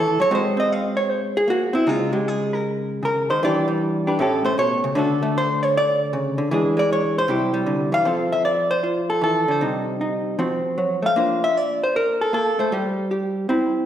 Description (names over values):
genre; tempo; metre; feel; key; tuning
solo jazz; 155 BPM; 4/4; swing 67% on 8ths; F major from 8.1 s; A4 = 437 Hz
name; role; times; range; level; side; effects
vintage hollow-body jazz guitar; solo; 0.0-13.9 s; A2 to F5; -18 LUFS; equal; none
room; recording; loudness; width
wet recital hall reverb, RT60 1.4 s; recorded in a church or concert hall; -19 LUFS; side -10 dB against mid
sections
0.0-8.1 A section; 8.1-13.9 B section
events
hollow-body jazz guitar solo 0.0-8.1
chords
0.3 G#7; 1.9 C#sus2; 3.4 Em7; 4.2 A7; 5.0 Dmaj7; 6.5 E7; 7.3 C; 8.1 Fmaj7; 9.6 Cm; 10.4 F; 11.2 Bbmaj9; 12.7 N.C.